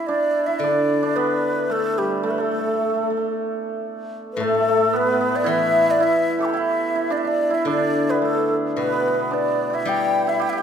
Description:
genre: chinese traditional, Chinese chamber ensemble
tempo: 110 BPM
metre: 4/4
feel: rubato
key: D zhi mode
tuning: A4 = 441 Hz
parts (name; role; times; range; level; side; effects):
- breathy xiao; melody; 0.0-10.6 s; G4 to D6; -22 LUFS; left 1 dB; none
- hammered dulcimer; second line; 0.0-10.6 s; G3 to A4; -23 LUFS; right 3 dB; none
- steel-string zither; accompaniment; 0.6-10.6 s; A2 to G3; -24 LUFS; left 3 dB; none
room: moderate concert hall reverb, RT60 2.4 s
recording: minimal, uncompressed stereo recording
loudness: -18 LUFS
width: side -8 dB against mid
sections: 0.1-10.6 A section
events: none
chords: none

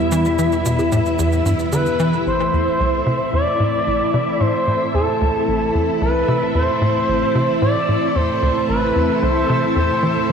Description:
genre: ambient, sequencer-driven space music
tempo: 112 BPM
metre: 4/4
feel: straight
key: A minor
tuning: A4 = 440 Hz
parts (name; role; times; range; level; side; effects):
- expressive portamento lead; melody; 0.0-10.3 s; E4 to D5; -20 LUFS; equal; chorus, shimmer reverb, ping-pong delay
- string machine, full ensemble; sustained chords; 0.0-10.3 s; G3 to E5; -20 LUFS; equal; ensemble chorus, shimmer reverb
- analog drone; bass; 0.0-2.2 s; E2; -28 LUFS; equal; chorus
- tight sequencer bass; riff; 0.1-10.3 s; A1 to E3; -21 LUFS; equal; analog chorus, ping-pong delay
- shaker and bongos; percussion; 0.1-2.1 s; none; -31 LUFS; right 1 dB; ping-pong delay
room: wet concert hall reverb, RT60 2.1 s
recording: none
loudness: -15 LUFS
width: side -7 dB against mid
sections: 0.0-2.3 A section; 2.3-10.3 B section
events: none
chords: 0.0 Em; 2.3 Am

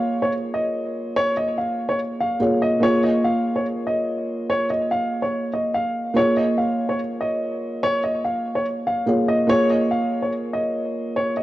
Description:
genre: hip hop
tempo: 144 BPM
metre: 4/4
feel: half-time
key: Bb minor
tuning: A4 = 442 Hz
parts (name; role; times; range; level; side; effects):
- dark baby grand piano; melody; 0.0-11.4 s; Db5 to F5; -22 LUFS; equal; cassette tape, tape echo
- felt-muted upright piano; accompaniment; 0.0-11.4 s; Bb3 to Db5; -23 LUFS; right 1 dB; cassette tape
room: light reverb, small room ambience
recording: home recording on cassette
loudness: -20 LUFS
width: side -15 dB against mid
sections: 0.0-11.4 A section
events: none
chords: 0.0 Bbm7

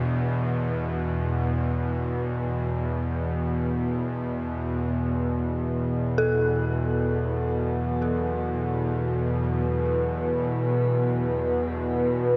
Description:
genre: dark ambient drone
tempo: free time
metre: none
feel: none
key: unclear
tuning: A4 = 435 Hz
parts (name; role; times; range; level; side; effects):
- dark detuned synth bell; arpeggios; 0.0-12.4 s; D4 to A4; -34 LUFS; equal; chorus, tape echo, shimmer reverb
- bowed-like drone; drone; 0.0-12.4 s; E2 to B2; -27 LUFS; equal; built-in reverb
- deep dark ambient pad; sustained chords; 6.1-12.4 s; E4 to F#5; -31 LUFS; equal; chorus, built-in reverb, shimmer reverb
room: wet cathedral reverb, RT60 5.8 s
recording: in a vast, echoing space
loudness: -26 LUFS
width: mono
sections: 0.0-5.0 A section; 5.0-12.4 B section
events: filter sweep on synth drone 0.0-5.0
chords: 0.0 E5; 5.0 Esus2

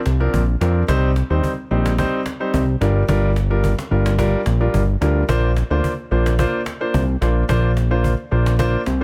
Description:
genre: afrobeats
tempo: 109 BPM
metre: 4/4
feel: straight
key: Bb major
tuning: A4 = 440 Hz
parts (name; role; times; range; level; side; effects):
- fat analog bass; bass; 0.1-9.0 s; G1 to F2; -20 LUFS; equal; none
- cajon; drums; 0.1-9.0 s; none; -29 LUFS; equal; none
- warm concert grand piano; accompaniment; 0.2-9.0 s; F3 to C5; -24 LUFS; equal; none
room: small room reverb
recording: none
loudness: -19 LUFS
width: mono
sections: 0.0-9.0 A section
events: none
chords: 0.0 Bbadd9; 0.9 Cm; 2.8 Gm7; 5.3 Bbadd9

